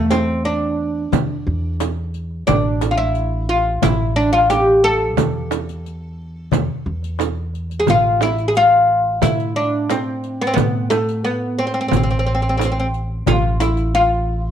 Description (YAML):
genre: Arabic maqam ensemble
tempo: 89 BPM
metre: 4/4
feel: straight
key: A minor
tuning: A4 = 440 Hz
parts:
  - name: oud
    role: melody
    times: 0.0-14.5 s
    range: A3 to A4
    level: -17 LUFS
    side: left 1 dB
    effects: none
  - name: upright bass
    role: bass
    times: 0.0-14.5 s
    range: A1 to A2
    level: -22 LUFS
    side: equal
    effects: none
  - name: darbuka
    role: percussion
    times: 0.1-14.0 s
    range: none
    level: -24 LUFS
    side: left 11 dB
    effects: none
  - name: frame drum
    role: percussion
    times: 0.1-13.8 s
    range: none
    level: -22 LUFS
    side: right 12 dB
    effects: none
  - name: riq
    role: percussion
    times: 0.1-14.0 s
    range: none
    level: -28 LUFS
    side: left 15 dB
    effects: none
room: light reverb, studio reverb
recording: 1960s-style stereo with parts hard left and right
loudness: -16 LUFS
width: side -9 dB against mid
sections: 0.0-7.9 A section; 7.9-14.5 B section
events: none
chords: none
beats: 0.45 1.13 1.80 | 2.48 3.15 3.83 4.50 | 5.18 5.85 6.53 7.20 | 7.88 8.55 9.22 9.90 | 10.57 11.25 11.92 12.59 | 13.27 13.94